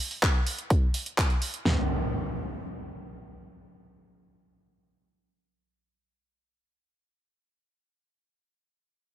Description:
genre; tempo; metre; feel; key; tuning
progressive house; 126 BPM; 4/4; straight; none; none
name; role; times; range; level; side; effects
house drum kit; drums; 0.1-1.6 s; handclaps, hi-hat; -30 LUFS; equal; none
big-room dance drum kit; drums; 0.2-1.8 s; kick drum, snare drum, toms; -24 LUFS; equal; none
impact; sound effects; 1.7-6.7 s; none; -32 LUFS; equal; none
room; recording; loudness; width
light reverb; none; -25 LUFS; side -12 dB against mid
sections
0.0-1.7 A section; 1.7-5.5 B section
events
none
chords
none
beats
0.23 0.70 1.18 | 1.66 2.13 2.61 3.08 | 3.56 4.04 4.51 4.99

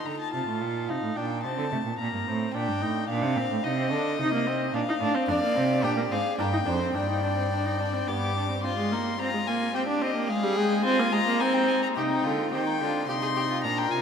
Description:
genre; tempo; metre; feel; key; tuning
classical, baroque-style fugue for string quartet; 108 BPM; 3/4; straight; Eb major, C minor from 5.3 s; A4 = 440 Hz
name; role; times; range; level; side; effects
warm violin; melody; 0.0-14.0 s; Eb5 to D6; -31 LUFS; left 7 dB; none
warm viola; accompaniment; 0.0-14.0 s; G3 to F4; -28 LUFS; right 1 dB; none
rich cello; bass; 0.0-8.6, 12.0-14.0 s; F2 to Eb3; -30 LUFS; right 4 dB; none
warm violin; second line; 5.3-14.0 s; Eb4 to D5; -31 LUFS; left 2 dB; none
room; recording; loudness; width
wet cathedral reverb, RT60 6.0 s; in a vast, echoing space; -24 LUFS; side -7 dB against mid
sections
0.0-8.6 A section; 8.6-12.0 B section; 12.0-14.0 A section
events
none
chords
0.3 Adim; 1.4 N.C.; 2.0 Eb; 3.1 Bb; 3.6 Cm9; 4.7 Bb (rootless); 5.3 Dm; 7.0 Gsus4; 8.1 G; 8.6 Cm; 10.3 Fm; 11.4 Cm; 13.1 F5/C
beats
| 0.34 0.89 1.44 | 1.99 2.54 3.09 | 3.65 4.19 4.74 | 5.29 5.84 6.39 | 6.95 7.51 8.08 | 8.64 9.20 9.75 | 10.29 10.85 11.40 | 11.96 12.52 13.08 | 13.64

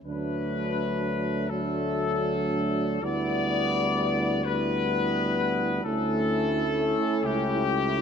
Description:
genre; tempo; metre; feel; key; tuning
classical, hymn-like piece for brass band; 39-43 BPM (dotted quarters); 12/8; rubato; D major; A4 = 437 Hz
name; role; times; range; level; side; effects
bright trumpet section; melody; 0.0-8.0 s; G4 to D5; -28 LUFS; left 7 dB; none
warm euphonium; accompaniment; 0.0-8.0 s; F#3 to A3; -32 LUFS; right 3 dB; none
mellow tuba; bass; 0.0-8.0 s; C#2 to D2; -31 LUFS; equal; none
mellow French horn section; second line; 0.1-8.0 s; D4 to E4; -33 LUFS; right 7 dB; none
warm trombone section; accompaniment; 0.1-8.0 s; A3 to C#4; -33 LUFS; left 1 dB; none
room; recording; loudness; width
light reverb; close, detailed microphones; -24 LUFS; side -7 dB against mid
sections
0.0-8.0 A section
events
none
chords
0.1 D; 3.0 Em7/D; 5.8 A/D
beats
| 0.06 1.51 3.03 4.46 | 5.85 7.24

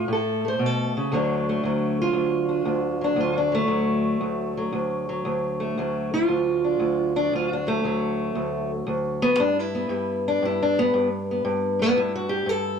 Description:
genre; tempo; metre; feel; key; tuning
acoustic country blues, solo or duo; 116 BPM; 4/4; swing 68% on 8ths; D major; A4 = 441 Hz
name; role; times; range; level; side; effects
fingerpicked steel-string acoustic guitar; solo; 0.0-12.8 s; D2 to C5; -22 LUFS; equal; none
room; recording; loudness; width
moderate spring reverb, RT60 1.4 s; none; -22 LUFS; side -6 dB against mid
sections
0.0-1.1 A section; 1.1-12.8 B section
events
steel-string acoustic guitar solo 1.1-12.8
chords
0.0 A; 1.1 D; 9.4 G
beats
0.08 0.60 | 1.12 1.63 2.15 2.67 | 3.19 3.70 4.22 4.74 | 5.25 5.77 6.29 6.80 | 7.32 7.84 8.36 8.87 | 9.39 9.90 10.42 10.94 | 11.45 11.97 12.48

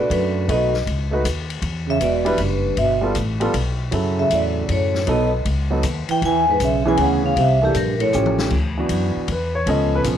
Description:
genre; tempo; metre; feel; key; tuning
jazz, small-group swing and bop; 157 BPM; 3/4; swing 66% on 8ths; B minor; A4 = 440 Hz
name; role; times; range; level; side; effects
vibraphone with medium hard mallets; melody; 0.0-8.4 s; G4 to G#5; -21 LUFS; left 3 dB; slapback echo
breathy trombone; second line; 0.0-8.4 s; E2 to E3; -24 LUFS; right 9 dB; slapback echo
warm upright piano; accompaniment; 0.0-10.2 s; C#3 to Eb5; -23 LUFS; right 1 dB; none
upright bass; bass; 0.1-10.2 s; E1 to F#2; -22 LUFS; left 1 dB; none
open jazz drum kit; drums; 0.1-10.2 s; crash cymbal, hi-hat, kick drum, ride cymbal, snare drum, toms; -29 LUFS; left 5 dB; none
room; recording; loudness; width
light reverb, small room reverb; 1960s-style stereo; -17 LUFS; side -10 dB against mid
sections
0.0-8.5 A section; 8.5-10.2 B section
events
drum fill 8.1-8.5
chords
0.5 B7; 1.6 Em7; 2.8 G9; 3.9 F#m7; 5.1 B7; 6.2 E6; 7.4 C13; 8.1 Aaug7; 8.5 D69; 9.7 C#7b13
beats
0.10 | 0.48 0.86 1.25 | 1.63 2.01 2.39 | 2.78 3.16 3.54 | 3.92 4.31 4.69 | 5.07 5.46 5.84 | 6.22 6.60 6.99 | 7.37 7.75 8.13 | 8.52 8.90 9.28 | 9.67 10.05

